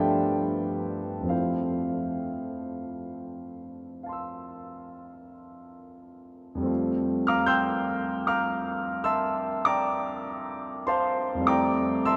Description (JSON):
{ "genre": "classical, impressionist solo piano", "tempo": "43-51 BPM", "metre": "4/4", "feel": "rubato", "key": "F major", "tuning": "A4 = 439 Hz", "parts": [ { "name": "warm concert grand piano", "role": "solo", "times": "0.0-12.2 s", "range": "F2 to G6", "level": "-28 LUFS", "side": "equal", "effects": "none" } ], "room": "wet cathedral reverb, RT60 5.9 s", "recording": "in a vast, echoing space", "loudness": "-28 LUFS", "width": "mono", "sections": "0.0-6.7 A section; 6.7-12.2 A section", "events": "none", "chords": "0.0 G9; 1.3 Fmaj7; 6.7 Fmaj9", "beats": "0.03 | 1.32 2.68 4.04 5.37 | 6.69 7.89 9.06 10.27 | 11.47" }